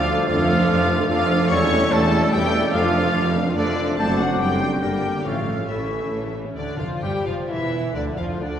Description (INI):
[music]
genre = classical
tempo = 129-147 BPM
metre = 3/4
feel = straight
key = D minor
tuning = A4 = 440 Hz
[part]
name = rich symphonic violin section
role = melody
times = 0.0-8.6 s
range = D5 to C#6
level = -28 LUFS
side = left 3 dB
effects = none
[part]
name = mellow large flute ensemble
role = second line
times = 0.0-8.6 s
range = D5 to E6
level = -32 LUFS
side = left 2 dB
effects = none
[part]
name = warm clarinet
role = second line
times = 0.0-8.6 s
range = D4 to C5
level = -31 LUFS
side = left 1 dB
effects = none
[part]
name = warm symphonic violin section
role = second line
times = 0.0-8.6 s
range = A3 to G4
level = -32 LUFS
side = left 1 dB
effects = none
[part]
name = rich symphonic viola section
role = accompaniment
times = 0.0-8.6 s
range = C#3 to C#4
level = -29 LUFS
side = equal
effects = none
[part]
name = warm bassoon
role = accompaniment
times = 0.0-8.6 s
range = A2 to G3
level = -30 LUFS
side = right 1 dB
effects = none
[part]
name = dark French horn section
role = sustained chords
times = 0.0-8.6 s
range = F3 to G4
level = -29 LUFS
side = equal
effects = none
[part]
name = concert harp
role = arpeggios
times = 0.0-8.6 s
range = E2 to E6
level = -31 LUFS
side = left 3 dB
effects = none
[part]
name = warm trumpet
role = stabs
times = 0.0-6.3 s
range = D4 to C#5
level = -26 LUFS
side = right 1 dB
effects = none
[part]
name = rich symphonic cello section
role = bass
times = 0.0-8.6 s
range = D2 to C#4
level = -27 LUFS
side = right 2 dB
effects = none
[part]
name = rich symphonic double bass section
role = bass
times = 0.0-8.6 s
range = E1 to F2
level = -28 LUFS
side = right 2 dB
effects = none
[part]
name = warm tuba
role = bass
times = 0.0-6.5 s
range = E1 to D2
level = -29 LUFS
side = right 2 dB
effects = none
[sound]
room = wet scoring stage reverb, RT60 1.5 s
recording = heard from further back in the room, faint mains hum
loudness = -18 LUFS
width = side -9 dB against mid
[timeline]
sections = 0.0-6.6 A section; 6.6-8.6 B section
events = none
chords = 0.3 Dm/F; 1.5 A7/E; 2.7 Dm/F; 4.0 D7/F#; 4.8 Gm; 5.2 A; 6.6 Dm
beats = | 0.28 0.69 1.10 | 1.51 1.92 2.33 | 2.74 3.15 3.57 | 3.98 4.39 4.82 | 5.25 5.68 6.12 | 6.56 7.02 7.48 | 7.94 8.40